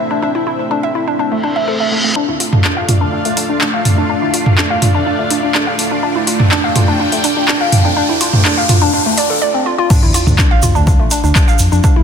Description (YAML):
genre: melodic techno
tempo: 124 BPM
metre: 4/4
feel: straight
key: D minor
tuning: A4 = 440 Hz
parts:
  - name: lush unison pad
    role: sustained chords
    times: 0.0-9.4 s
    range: A3 to G5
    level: -19 LUFS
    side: right 1 dB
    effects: chorus, phaser, sidechain pumping
  - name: woody wave-folded pluck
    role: arpeggios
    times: 0.1-12.0 s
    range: A3 to F5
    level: -16 LUFS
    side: equal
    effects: chorus, sidechain pumping, ping-pong delay
  - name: reverse cymbal, riser and sub drop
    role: sound effects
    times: 1.4-11.8 s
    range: none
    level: -22 LUFS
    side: left 1 dB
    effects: none
  - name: dark detuned saw bass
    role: bass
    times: 2.3-12.0 s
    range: A1 to F2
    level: -20 LUFS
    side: equal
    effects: sidechain pumping, high-pass filter
  - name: deep house drum kit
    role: drums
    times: 2.4-11.7 s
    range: crash cymbal, handclaps, hi-hat, toms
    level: -15 LUFS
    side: equal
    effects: overdrive, low-pass filter on hats, low-pass filter on toms, low-pass filter on snare, low-pass filter on cymbals, low-pass filter on room
  - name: electronic kick drum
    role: drums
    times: 9.9-11.9 s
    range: none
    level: -12 LUFS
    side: equal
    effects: none
  - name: tube shaker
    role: percussion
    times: 9.9-11.9 s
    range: none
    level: -23 LUFS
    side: right 6 dB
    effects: none
room: light reverb, digital ambience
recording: dense, heavily limited modern master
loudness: -11 LUFS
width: side -7 dB against mid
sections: 0.0-2.2 A section; 2.2-9.9 B section; 9.9-12.0 C section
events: filter sweep on analog synth pad 0.0-2.2; reverse cymbal 1.4-2.2; build-up 2.2-9.9; riser 2.2-9.4; filter sweep on synth pluck 2.2-9.9; drop 9.9-12.0; impact 9.9-11.8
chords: 0.0 Am; 2.2 Dm